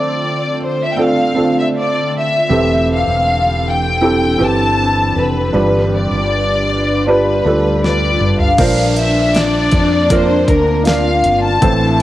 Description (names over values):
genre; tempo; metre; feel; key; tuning
pop ballad; 79 BPM; 4/4; straight; unclear; A4 = 440 Hz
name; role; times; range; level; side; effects
warm studio violin section; melody; 0.0-12.0 s; Bb4 to A5; -17 LUFS; left 2 dB; cassette tape
felt-muted upright piano; accompaniment; 0.0-12.0 s; G2 to D5; -17 LUFS; right 2 dB; cassette tape
ethereal airy pad; sustained chords; 0.0-12.0 s; D3 to B4; -22 LUFS; equal; ensemble chorus, built-in reverb, cassette tape
mellow fretless electric bass; bass; 2.5-12.0 s; E1 to F2; -19 LUFS; equal; none
pop drum kit; drums; 7.8-12.0 s; crash cymbal, hi-hat, kick drum, snare drum, toms; -17 LUFS; equal; overdrive, cassette tape
clear French horn section; second line; 8.6-12.0 s; D4 to F4; -19 LUFS; left 2 dB; cassette tape
downlifter; sound effects; 8.6-12.0 s; none; -29 LUFS; right 5 dB; none
room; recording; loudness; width
moderate spring reverb, RT60 2.0 s; home recording on cassette; -12 LUFS; side -14 dB against mid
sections
0.0-8.6 A section; 8.6-12.0 B section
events
drum fill 7.8-8.6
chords
0.0 Dm7; 2.5 C6/E; 5.5 G7; 8.6 Bbadd9